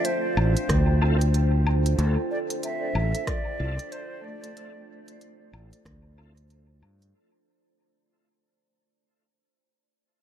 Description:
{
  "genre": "ambient dub",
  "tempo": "93 BPM",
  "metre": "4/4",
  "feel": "swing 60% on 16ths",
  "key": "D minor",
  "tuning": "A4 = 441 Hz",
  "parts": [
    { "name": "hollow concert flute", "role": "melody", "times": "0.0-5.2 s", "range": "C5 to E5", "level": "-33 LUFS", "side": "equal", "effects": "dub echo" },
    { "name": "deep dark ambient pad", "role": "sustained chords", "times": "0.0-7.1 s", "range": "D4 to C5", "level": "-32 LUFS", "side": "right 1 dB", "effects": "chorus, built-in reverb" },
    { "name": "vibraphone with medium mallets", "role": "arpeggios", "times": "0.0-8.2 s", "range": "A3 to G5", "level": "-39 LUFS", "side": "right 4 dB", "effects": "dub echo" },
    { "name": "organic electronic drum kit", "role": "drums", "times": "0.0-7.1 s", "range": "hi-hat, rim click, woodblock", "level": "-35 LUFS", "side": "left 2 dB", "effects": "small room ambience, dub echo" },
    { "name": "fingered electric bass", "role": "bass", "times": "0.4-7.1 s", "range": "A1 to G2", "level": "-21 LUFS", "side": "equal", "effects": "none" },
    { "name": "electronic kick drum", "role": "drums", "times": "0.7-6.0 s", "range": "none", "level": "-28 LUFS", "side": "equal", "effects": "small room ambience" },
    { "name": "tonewheel organ", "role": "stabs", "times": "1.0-6.3 s", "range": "C4 to A4", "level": "-40 LUFS", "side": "left 1 dB", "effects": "chorus vibrato, fast rotary speaker, dub echo" }
  ],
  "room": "light reverb",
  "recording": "none",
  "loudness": "-22 LUFS",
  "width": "side -10 dB against mid",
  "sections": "0.0-7.1 A section",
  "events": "fade-out 0.0-7.1",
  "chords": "0.0 Dm9"
}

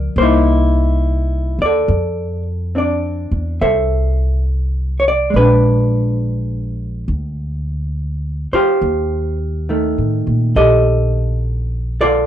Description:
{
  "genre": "jazz ballad",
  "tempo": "69 BPM",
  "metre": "4/4",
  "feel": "swing 66% on 8ths",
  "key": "unclear",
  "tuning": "A4 = 441 Hz",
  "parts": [
    { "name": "hollow-body jazz guitar", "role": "accompaniment", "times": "0.0-12.3 s", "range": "Eb3 to E5", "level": "-16 LUFS", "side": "equal", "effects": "none" },
    { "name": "upright bass", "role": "bass", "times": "0.0-12.2 s", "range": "Bb1 to Bb2", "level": "-17 LUFS", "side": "equal", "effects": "none" }
  ],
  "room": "light reverb",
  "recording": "dry, close 1970s-style studio recording",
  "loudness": "-14 LUFS",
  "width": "side -10 dB against mid",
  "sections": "0.0-12.3 A section",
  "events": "none",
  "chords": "0.1 C7#9; 1.9 F6; 5.3 Bb7b9; 8.8 Ebadd9(#11)"
}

